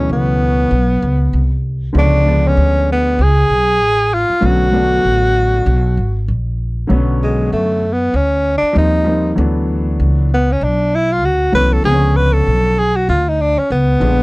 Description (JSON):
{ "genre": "hip hop, jazz-hop", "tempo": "97 BPM", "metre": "4/4", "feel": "swing 57% on 16ths", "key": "B dorian", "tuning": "A4 = 440 Hz", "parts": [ { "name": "breathy tenor saxophone", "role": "melody", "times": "0.0-14.2 s", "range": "G#3 to B4", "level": "-15 LUFS", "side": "equal", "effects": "none" }, { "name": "warm upright piano", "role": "accompaniment", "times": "0.0-14.2 s", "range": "B2 to D5", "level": "-19 LUFS", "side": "left 1 dB", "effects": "none" }, { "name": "upright bass", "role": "bass", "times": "0.0-14.2 s", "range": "G#1 to F#2", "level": "-15 LUFS", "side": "equal", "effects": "none" } ], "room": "little or no reverb", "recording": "dry, close 1970s-style studio recording", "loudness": "-12 LUFS", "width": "side -22 dB against mid", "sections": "0.0-6.9 A section; 6.9-14.2 B section", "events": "tenor saxophone solo 6.9-14.2", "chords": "0.0 D69 (rootless); 2.0 C#7b9; 4.4 Bm7; 6.9 Bmadd9; 8.8 D#69; 9.4 D69; 11.8 C#7b9" }